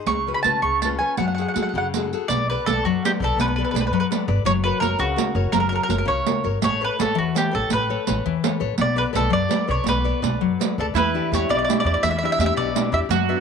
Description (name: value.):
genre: italian folk, Italian serenade.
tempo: 111 BPM (dotted quarters).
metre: 6/8.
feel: straight.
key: B minor.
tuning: A4 = 440 Hz.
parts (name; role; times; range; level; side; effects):
nylon-string guitar; accompaniment; 0.0-13.4 s; B2 to D5; -25 LUFS; left 12 dB; none.
mandolin; melody; 0.1-13.0 s; F#4 to C#6; -23 LUFS; right 2 dB; tape echo.
upright bass; bass; 0.1-13.3 s; F#1 to F#3; -26 LUFS; equal; none.
riq; percussion; 0.1-13.3 s; none; -26 LUFS; right 12 dB; none.
mandolin; second line; 10.9-13.4 s; E4 to F#4; -27 LUFS; right 12 dB; none.
room: moderate spring reverb, RT60 1.8 s, small room reverb.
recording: 1960s-style stereo with parts hard left and right.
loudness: -19 LUFS.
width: side -6 dB against mid.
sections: 0.0-2.3 A section; 2.3-13.4 B section.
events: none.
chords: 0.1 C#7sus4; 0.6 C#7; 1.2 F#madd9; 2.3 Bm7; 4.5 F#; 6.6 Aadd9; 8.8 Bm7; 11.0 Em7.